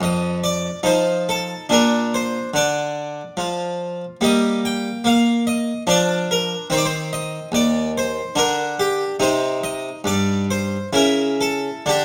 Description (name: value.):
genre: classical, baroque-style suite movement for harpsichord.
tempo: 72 BPM.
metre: 3/4.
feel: rubato.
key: unclear.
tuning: A4 = 441 Hz.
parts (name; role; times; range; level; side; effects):
harpsichord; solo; 0.0-12.0 s; Eb2 to G5; -20 LUFS; equal; none.
room: moderate stone room reverb, RT60 1.1 s.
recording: close, detailed microphones.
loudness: -20 LUFS.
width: mono.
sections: 0.0-12.0 A section.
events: none.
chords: 0.0 Bb (rootless); 0.8 F7; 1.7 Bb; 4.2 Gm7; 5.9 Dm/F; 6.7 Cm/Eb; 8.4 N.C.; 9.2 Cm; 10.9 C#m6.